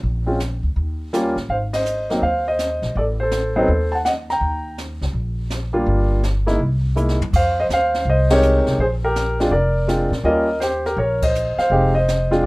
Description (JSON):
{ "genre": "jazz piano trio", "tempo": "164 BPM", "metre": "4/4", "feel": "swing 66% on 8ths", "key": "unclear", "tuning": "A4 = 440 Hz", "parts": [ { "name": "upright bass", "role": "bass", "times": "0.0-12.5 s", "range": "F1 to Bb2", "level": "-21 LUFS", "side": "equal", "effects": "none" }, { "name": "jazz brush drum kit", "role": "drums", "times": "0.0-12.5 s", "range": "brushed snare drum, crash cymbal, hi-hat, kick drum, ride cymbal, snare drum, toms", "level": "-28 LUFS", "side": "equal", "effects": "none" }, { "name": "warm concert grand piano", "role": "melody", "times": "0.3-12.5 s", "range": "C3 to Bb5", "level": "-18 LUFS", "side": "equal", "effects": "none" } ], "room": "light reverb", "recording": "rough home demo mix", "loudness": "-17 LUFS", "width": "side -24 dB against mid", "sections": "0.0-12.5 A section", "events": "band accent 1.7, 8.2, 11.2; drum fill 7.0-7.3", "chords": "0.0 N.C.; 0.8 Eb7; 1.5 Ab; 3.0 Adim; 4.4 Eb; 5.9 Gm7; 6.6 C7alt; 7.3 Fm7; 8.8 Bb7; 10.2 Eb7; 11.7 Fm7" }